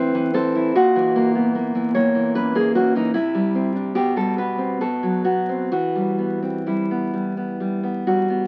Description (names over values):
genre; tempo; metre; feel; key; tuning
romantic piece for solo classical guitar; 63-76 BPM; 3/4; rubato; E minor; A4 = 440 Hz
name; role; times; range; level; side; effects
nylon-string guitar; solo; 0.0-8.5 s; A2 to C#5; -21 LUFS; equal; none
room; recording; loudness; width
light reverb; very old 78 rpm record, vinyl crackle; -21 LUFS; mono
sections
0.0-8.5 A section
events
none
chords
0.0 F#m7b5/A (rootless); 0.8 F#7/A#; 3.1 C; 4.0 Am9/B; 4.8 B5; 5.7 Em